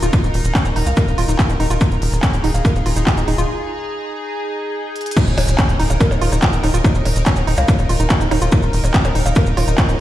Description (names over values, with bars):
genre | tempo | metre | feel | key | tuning
psychedelic trance | 143 BPM | 4/4 | straight | unclear | A4 = 438 Hz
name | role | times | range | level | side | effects
evolving wavetable pad | sustained chords | 0.0-10.0 s | Eb4 to Bb4 | -25 LUFS | equal | chorus, built-in reverb, sidechain pumping
woody wave-folded pluck | riff | 0.0-9.9 s | Db4 to F5 | -24 LUFS | moving between left 3 dB and right 3 dB | chorus, auto-pan, sidechain pumping, dub echo
tight sequencer bass | bass | 0.0-10.0 s | Eb1 to Db2 | -18 LUFS | equal | none
techno drum kit | drums | 0.0-10.0 s | crash cymbal, handclaps, hi-hat, percussion blips | -24 LUFS | equal | none
maracas | percussion | 0.0-10.0 s | none | -33 LUFS | right 2 dB | none
electronic kick drum | drums | 0.1-9.9 s | none | -15 LUFS | equal | none
impact | sound effects | 5.2-6.8 s | none | -25 LUFS | equal | none
room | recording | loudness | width
light reverb, digital ambience | played on a big sound system in a bare room, stone room reverb | -14 LUFS | side -14 dB against mid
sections
0.0-5.2 A section; 5.2-10.0 B section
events
break 3.5-5.2; drum fill 5.0; drop 5.2-10.0; impact 5.2-6.8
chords
0.0 Eb5